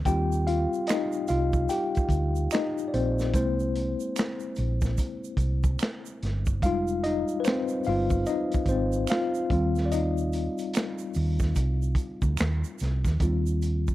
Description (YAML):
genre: R&B, neo-soul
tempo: 73 BPM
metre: 4/4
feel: swing 62% on 16ths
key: Eb major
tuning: A4 = 438 Hz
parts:
  - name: mellow tine electric piano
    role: accompaniment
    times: 0.0-13.9 s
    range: G3 to G5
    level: -28 LUFS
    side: left 2 dB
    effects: medium stereo tremolo
  - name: hollow-body short-scale fingered electric bass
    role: bass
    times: 0.1-13.9 s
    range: F1 to Eb2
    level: -27 LUFS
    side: right 1 dB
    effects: none
  - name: crunchy breakbeat drum kit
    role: drums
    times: 0.1-13.9 s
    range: finger snaps, hi-hat, kick drum, snare drum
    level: -29 LUFS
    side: right 1 dB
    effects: none
  - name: tube shaker and finger snaps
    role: percussion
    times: 0.1-13.9 s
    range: none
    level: -42 LUFS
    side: right 14 dB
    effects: none
room: small room ambience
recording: dry, close 1970s-style studio recording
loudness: -24 LUFS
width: side -15 dB against mid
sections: 0.0-13.2 A section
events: tine electric piano solo 0.0-13.2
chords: 0.1 Eb6; 3.3 C7b13; 6.6 Fm9; 9.5 Eb69; 13.2 Eb6